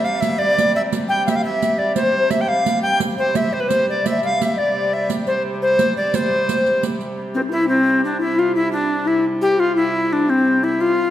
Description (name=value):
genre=medieval dance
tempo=115 BPM (dotted quarters)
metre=6/8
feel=straight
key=C major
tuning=A4 = 440 Hz
part: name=bright reedy tenor recorder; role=melody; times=0.0-11.1 s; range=C4 to G5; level=-18 LUFS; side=equal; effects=none
part: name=mellow hollow tenor recorder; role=second line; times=0.0-11.1 s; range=C4 to G5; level=-23 LUFS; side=left 4 dB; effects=none
part: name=rich hurdy-gurdy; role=drone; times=0.0-11.1 s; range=C3 to G3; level=-28 LUFS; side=right 1 dB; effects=none
part: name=riq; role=percussion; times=0.1-7.1 s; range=none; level=-24 LUFS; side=right 4 dB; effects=none
room=wet recital hall reverb, RT60 1.5 s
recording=none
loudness=-16 LUFS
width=side -12 dB against mid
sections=0.0-7.2 A section; 7.2-11.1 A section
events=none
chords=none